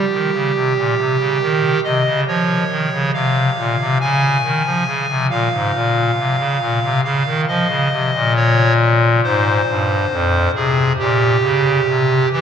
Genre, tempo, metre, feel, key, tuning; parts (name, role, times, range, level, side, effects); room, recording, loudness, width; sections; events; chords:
classical, chorale-style piece for pipe organ; 69 BPM; 4/4; straight; A4 = 439 Hz
pipe organ, clarinet reed; solo; 0.0-12.4 s; F2 to Ab5; -14 LUFS; equal
wet cathedral reverb, RT60 6.6 s; in a vast, echoing space; -14 LUFS; side -8 dB against mid
0.0-12.4 A section
0.0 Cm; 2.3 Db; 5.7 Bbmadd11; 9.2 Fm; 11.0 Gdim/Bb; 11.9 C